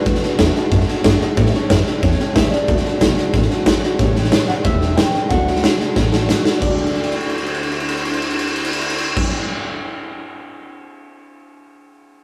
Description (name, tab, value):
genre	rockabilly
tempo	183 BPM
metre	4/4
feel	straight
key	D major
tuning	A4 = 439 Hz
part	electric guitar through a small old amp	melody	0.0-9.2 s	B4 to G5	-28 LUFS	equal	none
part	picked steel-string acoustic guitar	accompaniment	0.0-9.8 s	A2 to A4	-26 LUFS	equal	none
part	upright bass	bass	0.1-9.2 s	E1 to A2	-22 LUFS	equal	none
part	raw garage drum kit	drums	0.1-10.7 s	crash cymbal, hi-hat, kick drum, ride cymbal, snare drum	-20 LUFS	equal	none
room	moderate stone room reverb, RT60 1.0 s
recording	rough rehearsal-room recording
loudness	-17 LUFS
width	mono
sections	0.0-4.0 A section; 4.0-6.6 B section; 6.6-9.3 C section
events	drum fill 6.0-6.6, 6.8-9.2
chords	0.0 D; 1.4 A7; 2.7 D; 4.0 A7; 5.3 D